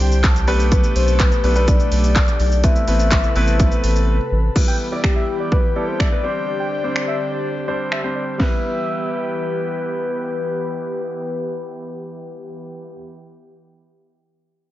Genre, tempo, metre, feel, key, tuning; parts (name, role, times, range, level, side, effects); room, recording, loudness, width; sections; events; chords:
dance-pop; 125 BPM; 4/4; straight; E minor; A4 = 440 Hz
warm concert grand piano; accompaniment; 0.0-13.0 s; G3 to B5; -26 LUFS; equal; sidechain pumping
airy breathy pad; sustained chords; 0.0-12.9 s; B2 to B4; -28 LUFS; equal; chorus, sidechain pumping
round analog bass; bass; 0.0-4.5 s; A1 to C2; -17 LUFS; equal; sidechain pumping
house drum kit; drums; 0.0-8.5 s; crash cymbal, finger snaps, handclaps, hi-hat, kick drum, shaker, snare drum; -18 LUFS; equal; overdrive
soft octave-layered synth lead; melody; 0.7-12.9 s; G4 to E5; -25 LUFS; left 4 dB; chorus, digital delay
expressive synth lead; melody; 4.7-9.8 s; D5 to G5; -29 LUFS; right 2 dB; chorus
little or no reverb; low-pass filter, nothing above 7.5 kHz; -16 LUFS; side -14 dB against mid
0.0-4.6 A section; 4.6-8.4 B section; 8.4-12.2 C section
grand piano fill 0.0-0.7; break 4.1-4.6
0.5 Gadd9/B; 2.6 Amadd9; 4.6 Em; 6.2 Csus2; 8.4 Em